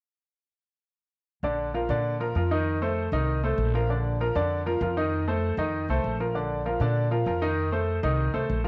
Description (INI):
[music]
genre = latin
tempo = 196 BPM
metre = 4/4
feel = straight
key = Bb major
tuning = A4 = 440 Hz
[part]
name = bright grand piano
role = accompaniment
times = 1.4-8.7 s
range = D3 to Eb5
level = -29 LUFS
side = equal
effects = cassette tape
[part]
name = upright bass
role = bass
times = 1.4-8.7 s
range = Bb1 to Bb2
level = -30 LUFS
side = equal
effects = none
[sound]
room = moderate spring reverb, RT60 1.4 s, studio reverb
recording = home recording on cassette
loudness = -27 LUFS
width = mono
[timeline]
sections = 1.4-8.7 A section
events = none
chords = 1.4 Bb; 2.7 F7; 3.9 Bb; 5.1 F7; 6.3 Bb; 7.6 F7